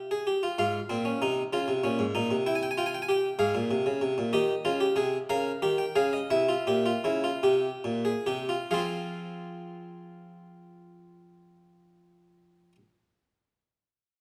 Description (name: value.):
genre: classical, baroque-style 3-part fugue for harpsichord.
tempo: 44-65 BPM (dotted quarters).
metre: 6/8.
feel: straight.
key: F minor.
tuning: A4 = 439 Hz.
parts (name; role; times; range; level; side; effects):
harpsichord; solo; 0.0-12.8 s; Ab2 to Ab5; -28 LUFS; equal; none.
room: moderate recital hall reverb, RT60 1.4 s.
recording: none.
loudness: -28 LUFS.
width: mono.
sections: 0.6-8.7 A section; 8.7-14.1 B section.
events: slowing down 3.4-8.7.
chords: 0.0 C; 0.6 Fm/Ab; 2.5 C; 3.4 Fm/Ab; 4.3 Cm; 5.3 Bbm/Db; 6.3 C7; 8.7 Fm.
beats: | 0.58 1.53 | 2.46 3.39 | 4.33 5.29 | 6.31 7.44 | 8.71 10.04 | 11.39 12.73.